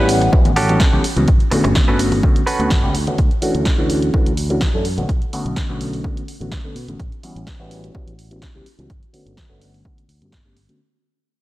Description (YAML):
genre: filtered disco house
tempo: 126 BPM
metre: 4/4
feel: straight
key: unclear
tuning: A4 = 440 Hz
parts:
  - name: overdriven reed electric piano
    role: accompaniment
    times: 0.0-10.8 s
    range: D3 to F#5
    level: -21 LUFS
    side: equal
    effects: phaser, sidechain pumping, low-pass filter
  - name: direct-recorded clean electric guitar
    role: riff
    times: 0.0-2.9 s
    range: C#4 to B4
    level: -22 LUFS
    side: right 2 dB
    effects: sidechain pumping, low-pass filter
  - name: fingered electric bass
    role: bass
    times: 0.0-10.7 s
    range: G1 to B2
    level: -22 LUFS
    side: equal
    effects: tube saturation, sidechain pumping, low-pass filter
  - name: punchy analog drum machine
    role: drums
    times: 0.1-10.8 s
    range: hi-hat, snare drum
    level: -26 LUFS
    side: equal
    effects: sidechain pumping on hats
  - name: tambourine and congas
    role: percussion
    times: 0.2-3.2 s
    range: none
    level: -28 LUFS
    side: left 2 dB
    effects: none
  - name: electronic kick drum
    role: drums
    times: 0.3-10.4 s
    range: none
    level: -17 LUFS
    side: equal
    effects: none
room: light reverb, digital ambience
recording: none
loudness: -15 LUFS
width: side -17 dB against mid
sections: 0.0-10.8 A section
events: fade-out 0.0-10.8; filter sweep on fingered electric bass 0.0-10.8; filter sweep 0.0-10.8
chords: 0.0 A13; 1.3 Gmaj9#11; 3.2 Dmaj9; 4.8 Bm7; 7.0 A13; 8.9 Gmaj9#11